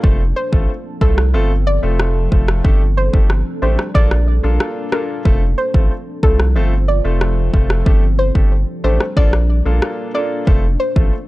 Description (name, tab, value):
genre	dancehall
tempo	92 BPM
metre	4/4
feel	straight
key	unclear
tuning	A4 = 438 Hz
part	clear grand piano	accompaniment	0.0-11.1 s	A3 to A4	-24 LUFS	left 2 dB	sidechain pumping
part	deep dark ambient pad	sustained chords	0.0-11.3 s	F3 to A4	-28 LUFS	equal	chorus, built-in reverb, sidechain pumping
part	saturated sub bass	bass	0.0-11.1 s	F1 to C2	-16 LUFS	equal	none
part	afro-pop drum kit	drums	0.0-11.1 s	kick drum, rim click	-14 LUFS	equal	none
part	soft round pluck	melody	0.4-10.9 s	A4 to D5	-22 LUFS	equal	chorus, phaser, tape echo
room	little or no reverb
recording	dry, gritty hardware recording, cassette tape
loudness	-13 LUFS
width	side -19 dB against mid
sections	0.0-11.3 A section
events	none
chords	0.0 F; 2.6 Gsus2; 3.9 Bbmaj7; 5.3 F; 7.9 Gsus2; 9.2 Bbmaj7; 10.5 F